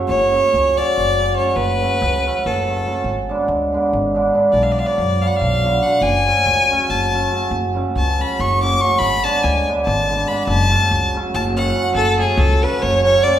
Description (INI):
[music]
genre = balkan folk, Balkan wedding band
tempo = 283 BPM (eighths)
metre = 7/8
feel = straight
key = F# minor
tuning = A4 = 435 Hz
[part]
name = cimbalom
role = accompaniment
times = 0.0-13.4 s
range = C#3 to D4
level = -20 LUFS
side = right 2 dB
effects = none
[part]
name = clear violin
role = second line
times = 0.1-13.4 s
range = G#4 to D6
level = -19 LUFS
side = left 2 dB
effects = none
[part]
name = upright bass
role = bass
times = 0.1-13.2 s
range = F#1 to F#2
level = -21 LUFS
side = equal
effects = none
[part]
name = rich fiddle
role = melody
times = 12.0-13.4 s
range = G#4 to D5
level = -17 LUFS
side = right 1 dB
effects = none
[sound]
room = wet recital hall reverb, RT60 1.4 s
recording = recorded in a church or concert hall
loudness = -15 LUFS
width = side -10 dB against mid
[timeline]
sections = 0.1-12.0 A section; 12.0-13.4 B section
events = violin solo 0.1-12.0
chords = 0.1 F#m; 3.1 G#dim; 4.5 Bm; 6.0 F#m; 9.0 G#dim; 10.5 F#m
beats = | 0.10 0.31 0.52 0.73 0.94 1.15 1.36 | 1.58 1.79 2.00 2.21 2.42 2.64 2.85 | 3.06 3.27 3.48 3.69 3.91 4.12 4.33 | 4.54 4.75 4.97 5.18 5.39 5.60 5.81 | 6.03 6.24 6.45 6.66 6.87 7.09 7.30 | 7.51 7.72 7.93 8.14 8.36 8.57 8.78 | 8.99 9.21 9.42 9.63 9.84 10.05 10.26 | 10.48 10.69 10.90 11.11 11.32 11.53 11.74 | 11.96 12.17 12.38 12.59 12.80 13.01 13.22